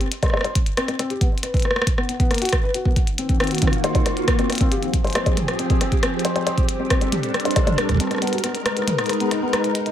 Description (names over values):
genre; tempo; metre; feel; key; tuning
IDM; 137 BPM; 4/4; straight; unclear; A4 = 441 Hz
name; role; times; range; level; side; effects
felt-muted upright piano; arpeggios; 0.0-9.9 s; A#3 to C5; -25 LUFS; left 2 dB; digital delay
glitchy drum kit; drums; 0.0-9.9 s; hi-hat, rim click, toms; -24 LUFS; equal; digital delay
electronic kick drum; drums; 0.2-8.0 s; none; -20 LUFS; equal; none
soft string machine; sustained chords; 3.1-9.9 s; Eb3 to Cb5; -24 LUFS; equal; phaser, ensemble chorus, vintage 12-bit sampler grit
room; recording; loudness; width
little or no reverb; none; -18 LUFS; side -10 dB against mid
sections
0.0-9.9 A section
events
kick drops out 8.2-9.9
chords
0.0 C5; 1.2 F#sus4; 3.0 Ebmadd9; 4.5 Fmadd9; 6.5 Gmadd9; 8.2 Abmadd9